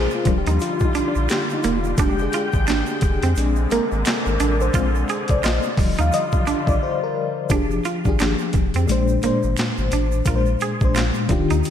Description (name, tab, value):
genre	R&B, neo-soul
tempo	87 BPM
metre	4/4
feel	swing 60% on 16ths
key	unclear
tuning	A4 = 438 Hz
part	electric guitar at the edge of break-up	second line	0.0-11.6 s	Bb3 to Ab4	-27 LUFS	right 7 dB	slapback echo
part	FM electric piano with tremolo	accompaniment	0.0-11.7 s	Bb2 to F5	-23 LUFS	left 4 dB	phaser
part	muted chamber string section	sustained chords	0.0-7.5 s	C3 to G5	-28 LUFS	left 1 dB	none
part	warm sub bass	bass	0.0-11.6 s	Eb1 to F2	-22 LUFS	equal	none
part	egg shaker and finger snaps	percussion	0.1-11.7 s	none	-38 LUFS	right 12 dB	none
part	boom bap sampler-style drum kit	drums	0.3-11.7 s	handclaps, hi-hat, kick drum, snare drum	-23 LUFS	equal	overdrive
room	moderate concert hall reverb, RT60 1.9 s, digital ambience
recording	big arena sound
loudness	-18 LUFS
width	side -9 dB against mid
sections	0.0-7.5 A section; 7.5-11.7 B section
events	FM electric piano solo 0.0-7.5; break 6.8-7.5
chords	0.3 Ebmaj9; 2.0 Fm69; 3.4 Bb9; 5.8 Ebmaj9; 7.5 Fm69; 8.9 Bb9